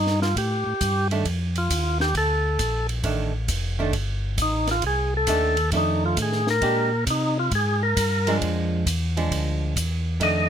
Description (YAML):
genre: soul jazz organ trio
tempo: 134 BPM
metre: 4/4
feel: swing 67% on 8ths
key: F mixolydian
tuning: A4 = 437 Hz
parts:
  - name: percussive tonewheel organ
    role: melody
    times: 0.0-10.5 s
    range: Eb4 to Eb5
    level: -23 LUFS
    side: left 1 dB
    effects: slow rotary speaker
  - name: mellow tonewheel organ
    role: bass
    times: 0.0-10.5 s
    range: F1 to C3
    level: -25 LUFS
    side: equal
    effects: chorus vibrato, slow rotary speaker
  - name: compact cocktail drum kit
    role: drums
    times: 0.1-10.3 s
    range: hi-hat, kick drum, ride cymbal, snare drum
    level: -29 LUFS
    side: right 1 dB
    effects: none
  - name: archtop guitar, miked and amplified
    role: accompaniment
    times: 1.1-10.5 s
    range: Eb3 to G4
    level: -26 LUFS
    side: right 4 dB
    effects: none
room: little or no reverb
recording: close, detailed microphones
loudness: -21 LUFS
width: side -9 dB against mid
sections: 0.0-10.5 A section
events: tonewheel organ solo 0.0-10.5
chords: 0.0 F13; 6.6 Bb13; 8.4 Ddim